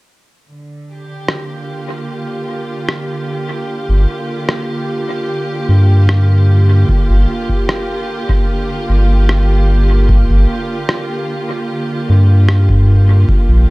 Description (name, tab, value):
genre	ambient dub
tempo	75 BPM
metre	4/4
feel	straight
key	G minor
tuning	A4 = 440 Hz
part	dark studio string section	sustained chords	0.5-13.7 s	D3 to G4	-20 LUFS	right 1 dB	vintage 12-bit sampler grit
part	electronic rim click	drums	1.3-12.6 s	none	-21 LUFS	equal	studio reverb, dub echo
part	warm sub bass	bass	3.9-13.7 s	G1 to G2	-9 LUFS	equal	none
part	electronic kick drum	drums	6.9-13.4 s	none	-15 LUFS	equal	studio reverb
room	digital ambience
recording	echo-heavy mix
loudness	-11 LUFS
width	side -23 dB against mid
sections	0.5-6.9 A section; 6.9-13.7 B section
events	none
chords	0.5 Gm7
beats	| 0.49 1.29 2.09 2.89 | 3.69 4.49 5.29 6.09 | 6.89 7.69 8.49 9.29 | 10.09 10.89 11.69 12.49 | 13.29